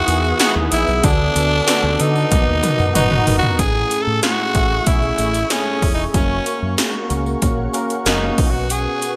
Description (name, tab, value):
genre	1980s-style pop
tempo	94 BPM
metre	4/4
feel	straight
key	unclear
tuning	A4 = 440 Hz
part	breathy tenor saxophone	melody	0.0-9.1 s	C#4 to A4	-22 LUFS	equal	digital delay
part	tine electric piano	accompaniment	0.0-9.2 s	A2 to B4	-25 LUFS	equal	analog chorus
part	ethereal airy pad	sustained chords	0.0-9.2 s	A3 to D#6	-31 LUFS	equal	ensemble chorus, built-in reverb
part	fingered electric bass	bass	0.1-8.9 s	E1 to D3	-24 LUFS	equal	none
part	80s electronic pad drums	drums	0.1-9.2 s	hi-hat, kick drum, snare drum, tambourine, toms	-22 LUFS	equal	gated reverb on snare and toms
part	tambourine	percussion	0.1-9.2 s	none	-35 LUFS	equal	none
room	light reverb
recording	bright 1980s-style digital production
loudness	-17 LUFS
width	mono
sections	0.0-3.6 A section; 3.6-9.2 B section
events	drum fill 2.3-3.6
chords	0.0 Emaj7; 1.0 D6; 2.3 Bmaj7; 3.6 Amaj7; 6.1 F#; 8.4 Bsus2